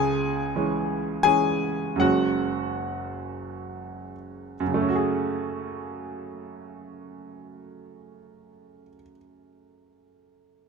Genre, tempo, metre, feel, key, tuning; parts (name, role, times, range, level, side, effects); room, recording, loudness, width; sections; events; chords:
neoclassical minimalist piano; 64-93 BPM; 3/4; rubato; F# minor; A4 = 440 Hz
clear baby grand piano; solo; 0.0-10.7 s; F#1 to G#5; -24 LUFS; equal
light reverb; close, detailed microphones; -23 LUFS; side -5 dB against mid
0.0-4.6 A section; 4.6-10.2 B section
slowing down 0.0-4.6
0.0 C#m; 2.0 F#sus2; 4.6 F#madd9